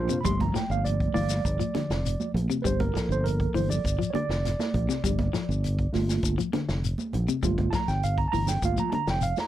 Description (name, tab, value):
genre	afrobeat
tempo	100 BPM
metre	4/4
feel	straight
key	G dorian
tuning	A4 = 440 Hz
part	tine electric piano	accompaniment	0.0-9.5 s	F3 to C6	-30 LUFS	right 4 dB	fast stereo tremolo
part	fingered electric bass	bass	0.0-9.3 s	F1 to Bb1	-28 LUFS	equal	none
part	electric guitar at the edge of break-up	arpeggios	0.1-9.2 s	C3 to G3	-31 LUFS	left 7 dB	none
part	vintage drum kit	drums	0.1-9.5 s	hi-hat, kick drum, snare drum, toms	-33 LUFS	equal	none
part	shekere	percussion	0.1-9.5 s	none	-34 LUFS	left 5 dB	none
part	congas	percussion	0.3-9.5 s	none	-33 LUFS	right 4 dB	none
room	little or no reverb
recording	dry, close 1970s-style studio recording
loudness	-24 LUFS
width	side -13 dB against mid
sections	0.2-9.5 A section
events	drum fill 0.0; tine electric piano solo 0.2-9.5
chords	0.2 Gm7